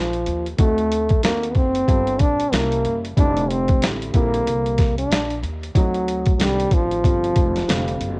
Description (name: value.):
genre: hip hop, jazz-hop.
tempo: 93 BPM.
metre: 4/4.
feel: swing 60% on 16ths.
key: unclear.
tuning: A4 = 439 Hz.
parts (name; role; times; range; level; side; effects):
mellow trombone; melody; 0.0-8.0 s; F3 to D4; -21 LUFS; equal; none.
dark upright piano; accompaniment; 0.0-8.2 s; D3 to A4; -28 LUFS; equal; cassette tape.
upright bass; bass; 0.0-8.2 s; F1 to Eb2; -26 LUFS; equal; none.
boom bap sampler-style drum kit; drums; 0.1-8.2 s; hi-hat, kick drum, snare drum; -19 LUFS; equal; cassette tape.
room: small room ambience.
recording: home recording on cassette.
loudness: -17 LUFS.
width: side -27 dB against mid.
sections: 0.0-8.2 A section.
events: none.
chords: 0.0 Bb5; 0.6 D7b9; 1.9 Gm7; 2.5 C7b9; 3.2 F6; 4.1 Bb6; 5.7 D7b9; 7.0 G5; 7.7 F5.